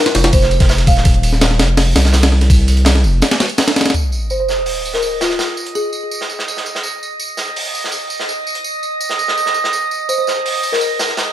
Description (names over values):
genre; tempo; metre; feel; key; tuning
drum and bass, jungle; 166 BPM; 4/4; straight; unclear; A4 = 440 Hz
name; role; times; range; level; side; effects
folk marimba with soft mallets; melody; 0.0-1.1, 4.3-6.3, 10.1-10.9 s; F4 to F5; -20 LUFS; left 1 dB; dub echo
breakbeat sampler-style drum kit; drums; 0.1-3.9 s; kick drum, ride cymbal, snare drum; -13 LUFS; equal; studio reverb
crunchy breakbeat drum kit; drums; 0.1-11.3 s; hi-hat, snare drum, tambourine; -21 LUFS; right 2 dB; high-pass filter on hats, studio reverb, high-pass filter on snare, high-pass filter on perc, high-pass filter on room
saturated sub bass; bass; 0.2-3.2 s; Eb1 to C2; -13 LUFS; equal; none
sub drop; sound effects; 3.9-5.4 s; none; -22 LUFS; equal; none
drifting glass-harmonics texture; texture; 4.6-11.3 s; Eb5; -21 LUFS; right 3 dB; chorus, built-in reverb
room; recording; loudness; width
light reverb, small room ambience; none; -13 LUFS; side -12 dB against mid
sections
0.0-3.9 A section; 3.9-11.3 B section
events
drop 0.0-3.9; break 3.2-3.9; impact 3.9-5.4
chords
0.0 Ebsus2; 3.9 N.C.